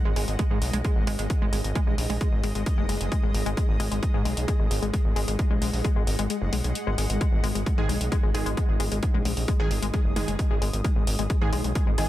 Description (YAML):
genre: driving peak-time techno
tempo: 132 BPM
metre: 4/4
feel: straight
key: unclear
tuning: A4 = 440 Hz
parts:
  - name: granular cloud pad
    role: texture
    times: 0.0-12.1 s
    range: G#3 to D#6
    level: -34 LUFS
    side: equal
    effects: built-in reverb, sidechain pumping
  - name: tight sequenced synth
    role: riff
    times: 0.1-12.0 s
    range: G#3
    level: -33 LUFS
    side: left 4 dB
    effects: chorus, sidechain pumping, tape echo
  - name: gritty driven synth bass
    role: bass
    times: 0.1-12.1 s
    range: F#1 to G#2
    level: -28 LUFS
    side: equal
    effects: sidechain pumping
  - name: electronic hi-hat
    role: drums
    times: 0.2-12.1 s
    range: none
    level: -34 LUFS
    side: left 1 dB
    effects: overdrive, sidechain pumping on hats, sidechain pumping on cymbals
  - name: electronic kick drum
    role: drums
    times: 0.4-11.8 s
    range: none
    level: -24 LUFS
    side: equal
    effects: overdrive
  - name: rave stab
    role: stabs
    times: 7.8-12.1 s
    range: D#3 to G#4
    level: -33 LUFS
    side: right 3 dB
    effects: chorus, built-in reverb, sidechain pumping, tape echo
room: little or no reverb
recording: dense, heavily limited modern master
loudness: -23 LUFS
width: side -14 dB against mid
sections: 0.0-12.1 A section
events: kick drops out 6.3-7.2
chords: 0.0 G#5